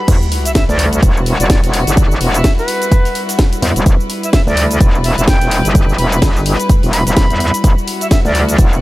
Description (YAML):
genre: bass house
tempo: 127 BPM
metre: 4/4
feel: swing 58% on 16ths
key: E minor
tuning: A4 = 442 Hz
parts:
  - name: breathy bright jazz flute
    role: melody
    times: 0.0-8.4 s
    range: B4 to B5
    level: -21 LUFS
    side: equal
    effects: diffuse ambient delay
  - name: warm studio string section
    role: sustained chords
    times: 0.0-8.8 s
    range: G3 to B4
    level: -22 LUFS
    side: left 2 dB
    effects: sidechain pumping
  - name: metallic wobble bass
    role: bass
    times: 0.1-8.8 s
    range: E1 to E2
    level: -14 LUFS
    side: equal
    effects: chorus, tube saturation, sidechain pumping
  - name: breakbeat sampler-style drum kit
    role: drums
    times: 0.1-8.7 s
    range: hi-hat, snare drum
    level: -31 LUFS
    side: right 2 dB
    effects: none
  - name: electronic kick drum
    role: drums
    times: 0.1-8.7 s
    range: none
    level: -11 LUFS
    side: equal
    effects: none
  - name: house drum kit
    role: drums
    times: 0.1-8.8 s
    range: crash cymbal, hi-hat, shaker, snare drum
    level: -20 LUFS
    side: equal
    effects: low-pass filter on perc, low-pass filter on hats, low-pass filter on cymbals, low-pass filter on snare, low-pass filter on room
  - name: sub drop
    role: sound effects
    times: 0.1-2.0 s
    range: none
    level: -21 LUFS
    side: equal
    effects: none
room: light reverb, digital ambience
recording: none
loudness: -10 LUFS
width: side -18 dB against mid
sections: 0.1-8.8 A section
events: drop 0.1-8.8; impact 0.1-2.0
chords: 0.1 Emadd9